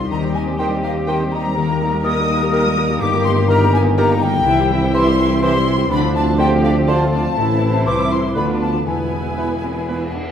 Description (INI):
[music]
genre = cinematic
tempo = 124 BPM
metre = 3/4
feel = straight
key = A minor from 4.5 s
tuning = A4 = 443 Hz
[part]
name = celesta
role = melody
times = 0.0-10.1 s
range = F5 to Eb6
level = -26 LUFS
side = left 2 dB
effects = none
[part]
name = muted studio violin section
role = melody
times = 0.0-10.2 s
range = G4 to E5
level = -33 LUFS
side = left 2 dB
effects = none
[part]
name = muted chamber violin section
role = second line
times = 0.0-10.1 s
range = F5 to Eb6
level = -29 LUFS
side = left 3 dB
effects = none
[part]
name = small flute group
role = second line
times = 0.0-10.1 s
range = F5 to Eb6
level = -24 LUFS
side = left 4 dB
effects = none
[part]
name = muted chamber viola section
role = accompaniment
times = 0.0-10.2 s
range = D3 to G4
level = -25 LUFS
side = right 2 dB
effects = none
[part]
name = dark French horn section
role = sustained chords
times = 0.0-10.1 s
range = Eb3 to C4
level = -24 LUFS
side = left 3 dB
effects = none
[part]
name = concert harp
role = arpeggios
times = 0.0-10.3 s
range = G2 to B5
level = -25 LUFS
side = left 8 dB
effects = none
[part]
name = mellow tuba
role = bass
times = 0.0-10.2 s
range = E1 to Eb2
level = -22 LUFS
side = right 3 dB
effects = none
[part]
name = muted chamber cello section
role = bass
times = 0.0-10.2 s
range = B3 to Bb4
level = -27 LUFS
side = right 2 dB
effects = none
[part]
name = muted chamber double bass section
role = bass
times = 0.0-10.2 s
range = A1 to G2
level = -24 LUFS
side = right 2 dB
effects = none
[part]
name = clear clarinet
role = second line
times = 0.6-10.0 s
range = E4 to G4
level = -31 LUFS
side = right 1 dB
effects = none
[part]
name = warm cor anglais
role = second line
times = 0.6-10.0 s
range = Bb4 to C5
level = -30 LUFS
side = right 3 dB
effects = none
[part]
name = mellow bassoon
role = accompaniment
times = 0.6-10.1 s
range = D3 to E3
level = -26 LUFS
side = right 1 dB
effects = none
[sound]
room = moderate scoring stage reverb, RT60 1.6 s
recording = none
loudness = -14 LUFS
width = side -8 dB against mid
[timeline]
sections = 0.0-10.3 A section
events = none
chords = 0.1 Cm/Eb; 1.6 Eb; 3.0 Eb/G; 4.5 C; 5.9 Dm7; 7.4 Am; 8.4 Bdim/D; 8.9 E